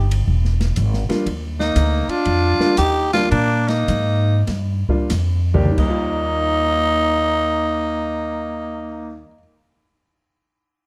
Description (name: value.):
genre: jazz, small-group swing and bop.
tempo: 85-122 BPM.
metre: 4/4.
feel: swing 66% on 8ths.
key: Eb major.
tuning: A4 = 439 Hz.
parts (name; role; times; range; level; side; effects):
growling tenor saxophone; melody; 0.0-9.2 s; D4 to G4; -22 LUFS; equal; none.
warm trumpet; second line; 0.0-9.2 s; Bb3 to Eb4; -29 LUFS; equal; none.
upright bass; bass; 0.0-9.2 s; E1 to Bb2; -22 LUFS; equal; none.
open jazz drum kit; drums; 0.1-6.0 s; crash cymbal, hi-hat, kick drum, ride cymbal, snare drum; -29 LUFS; equal; none.
clear baby grand piano; accompaniment; 1.1-9.4 s; Eb2 to D5; -26 LUFS; equal; none.
room: light reverb.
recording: dark, warm production.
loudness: -19 LUFS.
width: mono.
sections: 0.0-5.8 A section; 5.8-10.9 B section.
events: slowing down 1.3-5.8.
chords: 0.3 E7#11; 1.3 Ebmaj9.